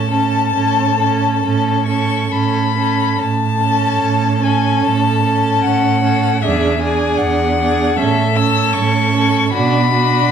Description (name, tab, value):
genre	classical, slow romantic movement for string quartet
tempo	67-79 BPM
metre	4/4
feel	rubato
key	A major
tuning	A4 = 440 Hz
part	rich violin	melody	0.0-10.3 s	E5 to E6	-18 LUFS	left 8 dB	none
part	rich violin	second line	0.0-10.3 s	F#4 to A4	-21 LUFS	left 2 dB	none
part	clear viola	accompaniment	0.0-10.3 s	C#4 to D4	-19 LUFS	right 6 dB	none
part	rich cello	bass	0.0-10.2 s	E2 to B2	-18 LUFS	right 5 dB	none
room	wet recital hall reverb, RT60 1.5 s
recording	none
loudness	-13 LUFS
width	side -8 dB against mid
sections	0.0-3.2 A section; 3.2-10.3 B section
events	none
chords	0.0 A; 6.4 E7; 8.0 A; 9.5 Bm